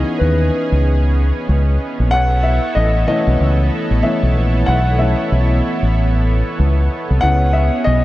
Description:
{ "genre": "R&B", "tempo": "94 BPM", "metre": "4/4", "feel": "swing 59% on 16ths", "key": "unclear", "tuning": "A4 = 439 Hz", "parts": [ { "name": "dark grand piano", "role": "accompaniment", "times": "0.0-8.0 s", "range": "E3 to F#5", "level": "-19 LUFS", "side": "left 2 dB", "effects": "none" }, { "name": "lush unison pad", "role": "sustained chords", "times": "0.0-8.0 s", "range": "B3 to C#5", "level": "-23 LUFS", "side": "right 3 dB", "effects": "chorus" }, { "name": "deep dub fingered electric bass", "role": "bass", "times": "0.0-8.0 s", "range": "A1 to D#2", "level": "-14 LUFS", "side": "equal", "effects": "none" } ], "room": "little or no reverb", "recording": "dark, warm production", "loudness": "-13 LUFS", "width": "side -16 dB against mid", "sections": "0.0-8.0 A section", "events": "grand piano solo 0.0-8.0", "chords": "0.0 C#m9; 2.1 B9sus4; 7.2 C#m9" }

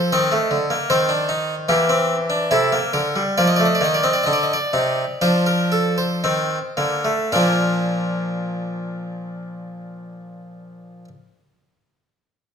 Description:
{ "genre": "classical, baroque-style 3-part fugue for harpsichord", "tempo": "52-79 BPM", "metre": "4/4", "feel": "straight", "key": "Bb major", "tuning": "A4 = 440 Hz", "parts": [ { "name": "harpsichord", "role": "solo", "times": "0.0-11.1 s", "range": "Bb2 to Eb5", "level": "-18 LUFS", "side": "equal", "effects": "none" } ], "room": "moderate recital hall reverb, RT60 1.4 s", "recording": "none", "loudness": "-17 LUFS", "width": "side -7 dB against mid", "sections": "0.0-7.3 A section; 7.3-11.9 B section", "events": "slowing down 0.0-7.3", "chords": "0.1 Cm; 1.7 C7/E; 3.4 F7sus4; 5.2 F7; 7.3 Bb" }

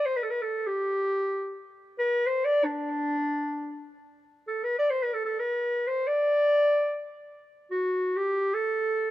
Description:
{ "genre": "Turkish makam ensemble", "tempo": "free time", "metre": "none", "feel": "none", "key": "D makam hicaz", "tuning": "A4 = 440 Hz", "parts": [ { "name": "clear clarinet", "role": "solo", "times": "0.0-9.1 s", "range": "D4 to D5", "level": "-25 LUFS", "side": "equal", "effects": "tape echo" } ], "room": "light reverb", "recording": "rough home demo mix", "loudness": "-25 LUFS", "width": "side -14 dB against mid", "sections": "0.0-4.2 A section; 4.2-9.1 A section", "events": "none", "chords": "none" }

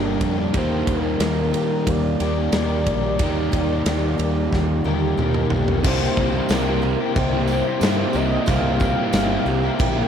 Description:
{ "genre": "rock, shoegaze and dream pop", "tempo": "91 BPM", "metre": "4/4", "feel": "straight", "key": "unclear", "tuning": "A4 = 440 Hz", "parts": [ { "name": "picked twelve-string acoustic guitar", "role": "arpeggios", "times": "0.0-10.1 s", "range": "F3 to G4", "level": "-32 LUFS", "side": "right 4 dB", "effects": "none" }, { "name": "crunchy overdriven guitar", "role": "riff", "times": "0.0-10.1 s", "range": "G2 to E4", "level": "-24 LUFS", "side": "right 6 dB", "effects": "reverse reverb" }, { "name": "overdriven semi-hollow guitar", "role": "riff", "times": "0.0-10.1 s", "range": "C3 to Bb4", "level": "-25 LUFS", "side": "left 9 dB", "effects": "analog chorus" }, { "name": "fuzz fingered electric bass", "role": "bass", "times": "0.0-10.0 s", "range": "G1 to Eb3", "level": "-25 LUFS", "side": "equal", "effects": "overdrive" }, { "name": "big rock drum kit", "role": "drums", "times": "0.2-10.0 s", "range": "crash cymbal, kick drum, ride cymbal, snare drum, toms", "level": "-24 LUFS", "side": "equal", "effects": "none" }, { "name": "reedy FM lead", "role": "melody", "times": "0.6-9.8 s", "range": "Bb4 to F5", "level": "-27 LUFS", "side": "left 2 dB", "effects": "chorus, tremolo, analog delay" }, { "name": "tambourine", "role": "percussion", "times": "5.8-9.5 s", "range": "none", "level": "-42 LUFS", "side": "right 8 dB", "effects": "none" } ], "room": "wet huge ambient reverb, RT60 5.2 s", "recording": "dreamy mix soaked in reverb", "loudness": "-18 LUFS", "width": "side -8 dB against mid", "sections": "0.0-5.8 A section; 5.8-10.1 B section", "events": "drum fill 4.5-5.8", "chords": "0.0 Gm7; 0.5 Ebmaj7; 5.8 C7sus4" }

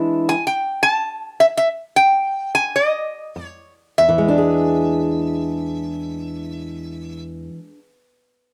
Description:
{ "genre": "acoustic country blues, solo or duo", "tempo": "93-110 BPM", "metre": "4/4", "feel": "swing 66% on 8ths", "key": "E mixolydian", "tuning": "A4 = 440 Hz", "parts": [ { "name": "lap resonator guitar", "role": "melody", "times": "0.0-7.2 s", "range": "D#5 to B5", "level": "-18 LUFS", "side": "equal", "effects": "none" }, { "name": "fingerpicked old ladder-braced acoustic guitar", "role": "accompaniment", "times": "0.0-7.9 s", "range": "E2 to G#4", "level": "-22 LUFS", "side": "equal", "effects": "none" } ], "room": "moderate studio reverb, RT60 0.6 s", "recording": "none", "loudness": "-19 LUFS", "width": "mono", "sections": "0.0-4.0 A section; 4.0-8.5 B section", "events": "slowing down 0.0-4.0; stop 0.0-3.3", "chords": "0.0 E7; 3.3 N.C.; 4.0 E7" }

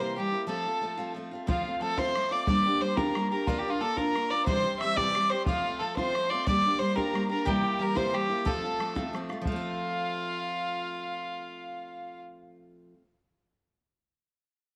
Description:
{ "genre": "celtic folk, Celtic jig", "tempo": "120 BPM (dotted quarters)", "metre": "6/8", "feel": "straight", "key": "F major", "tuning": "A4 = 442 Hz", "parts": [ { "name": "warm fiddle", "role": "melody", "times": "0.0-12.2 s", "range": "F4 to E5", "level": "-32 LUFS", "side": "equal", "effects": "none" }, { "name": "bright wooden whistle", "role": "second line", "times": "0.0-12.2 s", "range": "F5 to E6", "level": "-38 LUFS", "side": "equal", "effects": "slapback echo" }, { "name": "picked steel-string acoustic guitar", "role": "accompaniment", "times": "0.0-13.1 s", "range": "C3 to Bb4", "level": "-34 LUFS", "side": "equal", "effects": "none" }, { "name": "bodhran", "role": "percussion", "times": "1.5-9.6 s", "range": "none", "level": "-37 LUFS", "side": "equal", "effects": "none" } ], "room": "moderate spring reverb, RT60 1.8 s, small room ambience", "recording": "none", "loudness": "-29 LUFS", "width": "mono", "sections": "0.0-1.5 A section; 1.5-9.5 A section; 9.5-11.5 B section", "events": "none", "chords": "0.5 F; 2.5 Gm; 3.5 Bb; 4.5 C; 5.5 F; 6.5 Gm; 7.5 C7; 8.5 F" }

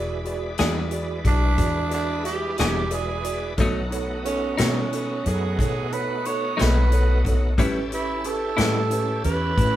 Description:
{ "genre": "slow blues", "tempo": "60 BPM (dotted quarters)", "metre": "12/8", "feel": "straight", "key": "unclear", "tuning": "A4 = 440 Hz", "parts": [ { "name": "barky tine electric piano", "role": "accompaniment", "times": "0.0-9.8 s", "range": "C#4 to E5", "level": "-30 LUFS", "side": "right 3 dB", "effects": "medium stereo tremolo" }, { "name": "bright tonewheel organ", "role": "sustained chords", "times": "0.0-9.8 s", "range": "G#3 to D5", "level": "-32 LUFS", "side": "equal", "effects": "slow rotary speaker, chorus vibrato" }, { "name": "vintage muted fingered electric bass", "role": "bass", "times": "0.0-9.8 s", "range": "E1 to B2", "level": "-25 LUFS", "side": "equal", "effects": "none" }, { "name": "swinging big-band drum kit", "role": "drums", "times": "0.3-9.7 s", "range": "hi-hat, kick drum, snare drum", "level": "-26 LUFS", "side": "equal", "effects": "none" }, { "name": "clean electric guitar", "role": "accompaniment", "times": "0.6-8.8 s", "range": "A2 to G#4", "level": "-26 LUFS", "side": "left 4 dB", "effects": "tremolo" }, { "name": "growling tenor saxophone", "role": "second line", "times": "1.3-9.8 s", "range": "C#4 to C#5", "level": "-26 LUFS", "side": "right 3 dB", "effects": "none" } ], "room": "moderate large studio reverb, RT60 0.9 s", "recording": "band playing live in one room", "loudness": "-21 LUFS", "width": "side -13 dB against mid", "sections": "0.0-9.8 A section", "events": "tenor saxophone solo 0.0-9.8", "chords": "0.0 E7; 3.6 B7; 7.6 A7" }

